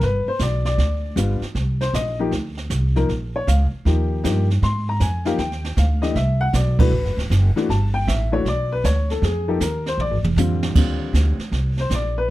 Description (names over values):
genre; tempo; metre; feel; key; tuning
jazz piano trio; 156 BPM; 4/4; swing 66% on 8ths; Eb major; A4 = 441 Hz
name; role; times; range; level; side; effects
warm upright piano; melody; 0.0-12.3 s; D3 to C6; -23 LUFS; left 3 dB; none
upright bass; bass; 0.0-12.3 s; D1 to Ab2; -20 LUFS; equal; none
jazz brush drum kit; drums; 0.0-12.3 s; brushed snare drum, crash cymbal, hi-hat, kick drum, ride cymbal, snare drum, toms; -24 LUFS; right 2 dB; none
room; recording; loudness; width
little or no reverb; close, detailed microphones; -18 LUFS; side -16 dB against mid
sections
0.0-10.8 A section; 10.8-12.3 B section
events
band accent 6.7; drum fill 10.0-10.8; upright piano solo 10.8-12.3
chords
0.0 G; 1.6 Cm7; 3.1 Bbm; 3.9 Eb; 4.6 Ab5; 6.1 Am (rootless); 6.9 D; 7.7 Gadd9; 9.2 Ebsus2; 10.0 Bb7; 10.8 Ebmaj9